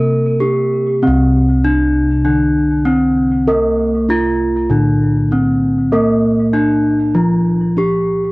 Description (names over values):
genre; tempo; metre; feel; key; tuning
Javanese gamelan; 98 BPM; 4/4; straight; C slendro; A4 = 439 Hz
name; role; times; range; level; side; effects
gamelan-type bronze metallophone; melody; 0.0-8.3 s; Bb3-40c to Bb4-40c; -15 LUFS; equal; cassette tape, analog delay
gamelan-type bronze metallophone; accompaniment; 0.0-8.3 s; C3 to Bb3-40c; -20 LUFS; right 1 dB; cassette tape
gamelan-type bossed gongs; bass; 0.0-8.3 s; C2 to Bb4-40c; -17 LUFS; equal; tube saturation
room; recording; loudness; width
light reverb; home recording on cassette; -12 LUFS; side -22 dB against mid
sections
0.0-1.0 A section; 1.0-8.3 B section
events
none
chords
none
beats
0.41 | 1.03 1.64 2.25 2.86 | 3.48 4.09 4.70 5.31 | 5.93 6.54 7.15 7.76